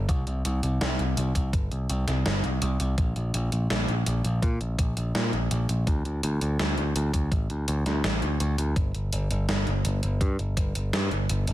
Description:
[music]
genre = synthwave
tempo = 83 BPM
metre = 4/4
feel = straight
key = unclear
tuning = A4 = 437 Hz
[part]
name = modern bright picked electric bass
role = bass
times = 0.0-11.5 s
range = G1 to Bb2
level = -26 LUFS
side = equal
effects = none
[part]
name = electronic kick drum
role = drums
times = 0.1-10.7 s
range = none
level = -26 LUFS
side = equal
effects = none
[part]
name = gated 80s digital drum machine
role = drums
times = 0.1-11.5 s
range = hi-hat, snare drum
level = -30 LUFS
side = equal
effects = gated reverb, gated reverb snare
[sound]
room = little or no reverb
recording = none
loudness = -24 LUFS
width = side -14 dB against mid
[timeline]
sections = 0.0-11.5 A section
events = none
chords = none

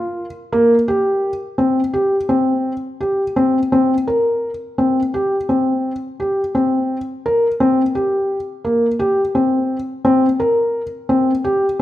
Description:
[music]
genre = contemporary instrumental, contemporary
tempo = 171 BPM (eighths)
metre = 9/8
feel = straight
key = unclear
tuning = A4 = 440 Hz
[part]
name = felt-muted upright piano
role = solo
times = 0.0-11.8 s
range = Bb3 to Bb4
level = -15 LUFS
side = equal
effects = none
[sound]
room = wet recital hall reverb, RT60 1.4 s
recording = none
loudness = -15 LUFS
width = side -14 dB against mid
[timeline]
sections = 0.0-3.7 A section; 3.7-11.8 A section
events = none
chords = none

